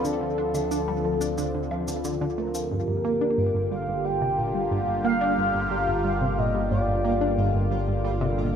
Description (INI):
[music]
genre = ambient, sequencer-driven space music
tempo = 90 BPM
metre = 4/4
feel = straight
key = G minor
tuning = A4 = 439 Hz
[part]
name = expressive synth lead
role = melody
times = 0.0-7.7 s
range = A4 to G5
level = -28 LUFS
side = left 1 dB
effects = wide subtle chorus, tape echo
[part]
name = sweeping resonant pad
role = sustained chords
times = 0.0-8.6 s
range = D3 to A4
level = -28 LUFS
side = equal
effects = chorus, phaser
[part]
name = tight sequenced synth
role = riff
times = 0.0-8.5 s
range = G2 to D4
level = -28 LUFS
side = right 1 dB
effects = chorus, tape echo
[part]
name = analog drone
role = bass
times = 0.0-8.6 s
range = G1 to D2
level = -32 LUFS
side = equal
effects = chorus, phaser
[part]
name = cabasa and woodblock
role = percussion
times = 0.0-2.7 s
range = none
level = -39 LUFS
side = left 1 dB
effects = tape echo
[part]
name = pulsing gated texture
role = texture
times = 2.7-8.6 s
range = F4 to D6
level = -50 LUFS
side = right 1 dB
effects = chorus, built-in reverb
[sound]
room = wet plate reverb, RT60 3.3 s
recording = cassette tape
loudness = -23 LUFS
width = side -8 dB against mid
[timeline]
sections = 0.0-2.7 A section; 2.7-8.6 B section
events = fade-in on synth texture 2.7-8.6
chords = 0.0 Dm7; 2.7 Gm7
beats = | 0.05 0.71 1.38 2.05 | 2.71 3.38 4.05 4.71 | 5.38 6.05 6.71 7.38 | 8.05